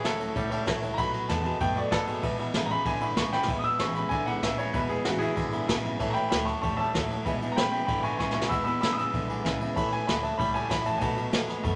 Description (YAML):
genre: rockabilly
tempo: 191 BPM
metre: 4/4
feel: straight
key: E mixolydian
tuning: A4 = 440 Hz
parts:
  - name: bright upright piano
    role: melody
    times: 0.0-11.3 s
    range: E4 to E6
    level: -32 LUFS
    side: equal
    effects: none
  - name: honky-tonk upright piano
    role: accompaniment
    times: 0.0-11.7 s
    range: B4 to D6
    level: -39 LUFS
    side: equal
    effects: none
  - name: picked steel-string acoustic guitar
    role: accompaniment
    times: 0.0-11.8 s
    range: E2 to F#4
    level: -39 LUFS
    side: equal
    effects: none
  - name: twangy electric guitar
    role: riff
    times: 0.0-11.8 s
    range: E2 to A3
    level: -37 LUFS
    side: equal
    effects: none
  - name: upright bass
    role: bass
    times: 0.0-11.8 s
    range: E1 to G#2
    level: -41 LUFS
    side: equal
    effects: none
  - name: jazz brush drum kit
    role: drums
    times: 0.0-11.7 s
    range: kick drum, ride cymbal, snare drum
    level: -33 LUFS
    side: equal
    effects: none
room: moderate large studio reverb, RT60 1.4 s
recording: nothing above 10.6 kHz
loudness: -28 LUFS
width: mono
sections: 0.0-3.5 A section; 3.5-11.8 A section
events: upright piano solo 0.0-11.8; drum fill 3.3, 8.2-8.5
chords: 0.0 A; 1.0 B7; 2.2 E; 6.0 A; 7.3 E; 9.8 A; 11.0 B7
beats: 0.05 0.36 0.68 | 0.99 1.30 1.61 1.93 | 2.24 2.55 2.87 3.18 | 3.49 3.81 4.12 4.43 | 4.75 5.06 5.37 5.69 | 6.00 6.32 6.63 6.94 | 7.26 7.57 7.88 8.20 | 8.51 8.82 9.14 9.45 | 9.77 10.08 10.39 10.71 | 11.02 11.33 11.65